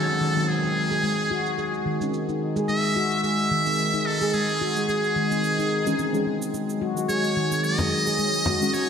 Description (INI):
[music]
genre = organic downtempo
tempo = 109 BPM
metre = 4/4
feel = swing 56% on 16ths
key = unclear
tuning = A4 = 440 Hz
[part]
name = trumpet with metal mute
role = melody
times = 0.0-8.9 s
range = G#4 to E5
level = -25 LUFS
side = right 1 dB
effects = ping-pong delay
[part]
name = muted felt-like synth keys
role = accompaniment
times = 0.0-8.9 s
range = D#3 to G#4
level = -30 LUFS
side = left 2 dB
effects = chorus, low-pass filter, ping-pong delay
[part]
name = warm analog pad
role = sustained chords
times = 0.0-8.9 s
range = F#3 to G#3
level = -31 LUFS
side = equal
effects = lush chorus
[part]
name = handpan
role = arpeggios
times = 0.0-8.9 s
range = D#3 to G#4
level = -26 LUFS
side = left 1 dB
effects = low-pass filter, ping-pong delay
[part]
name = downlifter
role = sound effects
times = 0.0-2.1 s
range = none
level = -41 LUFS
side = equal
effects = none
[part]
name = cabasa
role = drums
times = 0.1-8.9 s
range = none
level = -41 LUFS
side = right 5 dB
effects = low-pass filter on hats, low-pass filter on snare, low-pass filter on perc
[part]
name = frame drum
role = percussion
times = 7.8-8.6 s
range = none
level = -30 LUFS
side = left 1 dB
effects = none
[sound]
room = wet lush hall reverb, RT60 1.7 s, digital ambience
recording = dreamy mix soaked in reverb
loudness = -21 LUFS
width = side -7 dB against mid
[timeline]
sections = 0.0-8.9 A section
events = none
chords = 0.0 G#7sus4; 2.1 C#m (rootless); 6.5 G#7sus4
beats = 0.48 1.03 1.58 | 2.13 2.69 3.23 3.79 | 4.34 4.89 5.44 5.99 | 6.54 7.09 7.64 8.19 | 8.74